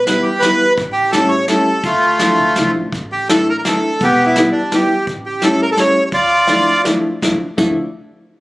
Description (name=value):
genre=musette waltz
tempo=169 BPM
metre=3/4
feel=rubato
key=D harmonic minor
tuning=A4 = 438 Hz
part: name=bandoneon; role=melody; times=0.0-6.8 s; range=A3 to D5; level=-14 LUFS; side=equal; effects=none
part: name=upright bass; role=bass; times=0.0-7.7 s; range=E1 to D2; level=-27 LUFS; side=equal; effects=none
part: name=dark upright piano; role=accompaniment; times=0.1-7.7 s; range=E3 to E4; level=-16 LUFS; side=left 1 dB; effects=none
part: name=soft brush drum kit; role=drums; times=0.1-7.7 s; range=crash cymbal, hi-hat, kick drum, snare drum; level=-20 LUFS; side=equal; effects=none
room=light reverb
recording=recorded on a phone in the room, club ambience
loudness=-12 LUFS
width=side -20 dB against mid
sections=0.0-2.9 A section; 2.9-7.2 B section; 7.2-8.3 C section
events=none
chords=0.0 Em; 0.8 A7; 1.8 Dmadd9; 2.9 Asus4; 4.0 Em; 5.1 A7; 6.1 Dmadd9